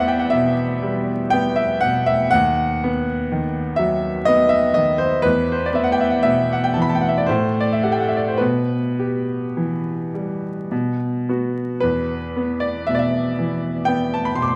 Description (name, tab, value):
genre	classical, romantic nocturne for solo piano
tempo	52-63 BPM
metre	3/4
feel	rubato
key	E minor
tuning	A4 = 440 Hz
part	bright baby grand piano	solo	0.0-14.6 s	D#2 to D6	-20 LUFS	equal	none
room	moderate recital hall reverb, RT60 1.9 s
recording	dark, warm production, vinyl crackle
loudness	-20 LUFS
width	mono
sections	0.0-14.6 A section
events	none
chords	0.0 Em; 2.3 B/D#; 5.3 E5; 7.3 Am7; 8.4 Em/B; 10.7 B5; 11.8 E5